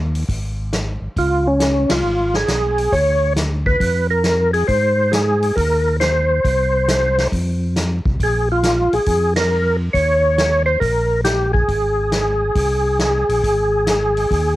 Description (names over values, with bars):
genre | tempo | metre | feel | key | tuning
soul jazz organ trio | 137 BPM | 4/4 | swing 68% on 8ths | Ab major | A4 = 440 Hz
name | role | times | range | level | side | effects
tonewheel organ | bass | 0.0-14.6 s | Ab1 to Ab2 | -20 LUFS | equal | chorus vibrato, stopped rotary speaker
vintage drum kit | drums | 0.1-14.4 s | hi-hat, kick drum, ride cymbal, snare drum | -23 LUFS | equal | cassette tape
percussive tonewheel organ | melody | 1.2-14.6 s | Db4 to Db5 | -17 LUFS | equal | slow rotary speaker, overdrive, chorus vibrato, cassette tape
room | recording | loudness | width
light reverb, studio reverb | home recording on cassette | -15 LUFS | side -16 dB against mid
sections
0.0-14.6 A section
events
band accent 1.8, 9.3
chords
0.3 N.C.; 1.2 Db7; 2.9 Dm6; 4.7 Abadd9; 6.4 N.C.; 7.3 F5; 8.2 Bb5; 9.9 Eb5; 11.7 Ab